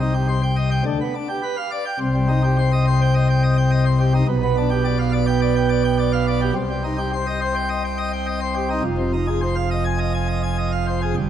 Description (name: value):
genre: classical, organ toccata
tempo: 105 BPM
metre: 4/4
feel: straight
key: unclear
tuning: A4 = 440 Hz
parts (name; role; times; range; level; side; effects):
- pipe organ, plenum; solo; 0.0-11.3 s; F1 to Ab5; -18 LUFS; equal; none
room: wet scoring stage reverb, RT60 1.5 s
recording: none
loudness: -18 LUFS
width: side -10 dB against mid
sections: 0.0-11.3 A section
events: none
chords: 0.0 Cm; 0.9 G7/D; 2.0 Cm; 4.3 G7/B; 6.6 Cm; 8.8 Fm7